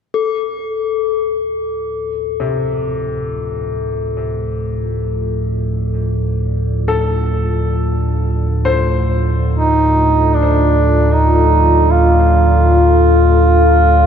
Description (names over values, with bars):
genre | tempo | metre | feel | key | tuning
dark ambient drone | free time | none | none | D phrygian | A4 = 440 Hz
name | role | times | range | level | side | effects
deep dark ambient pad | sustained chords | 1.9-14.1 s | F4 to D5 | -19 LUFS | left 1 dB | chorus, built-in reverb
deep rumbling drone | drone | 2.0-14.1 s | D2 to A2 | -15 LUFS | right 1 dB | built-in reverb, lush chorus
bronze singing bowl | texture | 0.1-14.1 s | A4 | -22 LUFS | left 7 dB | none
clear grand piano | arpeggios | 2.4-14.1 s | C3 to C5 | -24 LUFS | left 4 dB | ping-pong delay
mellow duduk | melody | 9.6-14.1 s | D4 to F4 | -13 LUFS | right 1 dB | none
room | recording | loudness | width
wet cathedral reverb, RT60 5.2 s | cassette tape | -13 LUFS | side -8 dB against mid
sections
0.1-14.1 A section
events
fade-in on synth drone 0.1-14.1; fade-in on ambient pad 0.1-14.1; fade-in on grand piano 0.1-14.1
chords
0.1 Dm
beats
free time